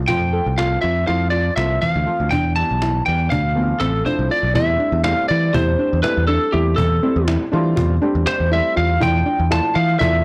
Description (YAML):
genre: progressive instrumental, band music in an uneven meter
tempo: 242 BPM (eighths)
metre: 9/8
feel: straight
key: unclear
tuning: A4 = 440 Hz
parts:
  - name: picked electric bass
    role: bass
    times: 0.0-10.2 s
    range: A1 to E3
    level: -22 LUFS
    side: equal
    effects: none
  - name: lightly driven lead guitar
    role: melody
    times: 0.1-10.2 s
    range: G4 to A5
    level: -22 LUFS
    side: equal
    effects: none
  - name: warm grand piano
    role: accompaniment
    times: 0.1-10.2 s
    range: E3 to G4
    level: -30 LUFS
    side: equal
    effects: none
  - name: soft round pluck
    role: arpeggios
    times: 0.1-10.1 s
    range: E3 to A4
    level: -26 LUFS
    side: equal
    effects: chorus
  - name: cajon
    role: drums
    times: 0.1-10.1 s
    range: none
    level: -30 LUFS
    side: equal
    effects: none
room: light reverb, small room ambience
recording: blown-out, overdriven recording, overdrive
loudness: -18 LUFS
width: mono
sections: 0.0-4.5 A section; 4.5-10.2 B section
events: none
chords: 0.1 F; 2.3 Em; 3.3 Dm7; 4.5 Fmaj7/E; 9.0 Dm/E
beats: | 0.08 0.33 0.58 0.83 1.07 1.32 1.57 1.82 2.07 | 2.31 2.56 2.81 3.06 3.31 3.56 3.80 4.05 4.30 | 4.55 4.80 5.04 5.29 5.54 5.79 6.04 6.28 6.53 | 6.78 7.03 7.28 7.52 7.77 8.02 8.27 8.52 8.76 | 9.01 9.26 9.51 9.75 10.00